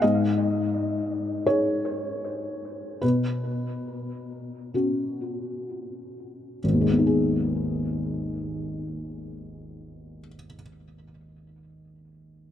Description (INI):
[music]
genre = neoclassical minimalist piano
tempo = 31-44 BPM (dotted quarters)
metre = 6/8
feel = rubato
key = G# minor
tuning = A4 = 442 Hz
[part]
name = felt-muted upright piano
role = solo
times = 0.0-12.5 s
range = G#1 to D#5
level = -25 LUFS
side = left 1 dB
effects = analog delay
[sound]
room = moderate plate reverb, RT60 3.0 s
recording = echo-heavy mix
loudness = -24 LUFS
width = side -10 dB against mid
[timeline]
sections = 0.0-6.6 A section; 6.6-10.5 B section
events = slowing down 0.0-6.6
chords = 0.0 G#5; 3.0 Bsus2; 6.6 G#m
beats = | 0.02 1.45 | 3.03 4.74 | 6.63 8.55